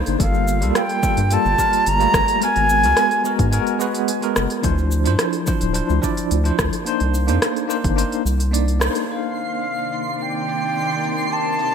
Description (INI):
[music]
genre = sunset chillout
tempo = 108 BPM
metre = 4/4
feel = straight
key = unclear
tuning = A4 = 440 Hz
[part]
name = bell-like tine electric piano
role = accompaniment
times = 0.0-11.7 s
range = F3 to D5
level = -22 LUFS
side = moving between left 6 dB and right 5 dB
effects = medium stereo tremolo, auto-pan, digital delay
[part]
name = round analog bass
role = bass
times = 0.0-8.9 s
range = D1 to Ab2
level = -20 LUFS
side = equal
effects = none
[part]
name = deep house drum kit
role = drums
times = 0.1-11.7 s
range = cabasa, hi-hat, rim click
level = -25 LUFS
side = equal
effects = low-pass filter on perc, low-pass filter on hats, low-pass filter on snare, low-pass filter on room, gated reverb
[part]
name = mellow silver concert flute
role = melody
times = 0.2-3.5, 9.1-11.7 s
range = F5 to Bb5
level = -20 LUFS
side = equal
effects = ping-pong delay
[part]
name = electronic kick drum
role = drums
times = 0.2-8.0 s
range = none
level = -23 LUFS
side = equal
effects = none
[part]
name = soft string machine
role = sustained chords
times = 9.5-11.7 s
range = C3 to D5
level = -26 LUFS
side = equal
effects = ensemble chorus
[part]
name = twinkling granular texture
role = texture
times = 9.3-11.7 s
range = C6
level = -28 LUFS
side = right 2 dB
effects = built-in reverb, analog chorus
[sound]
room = moderate lush hall reverb, RT60 1.8 s, digital ambience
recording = bright 1980s-style digital production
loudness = -17 LUFS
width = side -7 dB against mid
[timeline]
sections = 0.0-9.1 A section; 9.1-11.7 B section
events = band accent 8.8; filter sweep on drum 9.1-11.7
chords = 0.2 Gm9; 2.4 Abm9; 4.6 Dm9; 6.9 Cm9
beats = | 0.20 0.75 1.31 1.86 | 2.42 2.98 3.53 4.09 | 4.64 5.20 5.75 6.31 | 6.86 7.42 7.97 8.53 | 9.09 9.64 10.20 10.75 | 11.31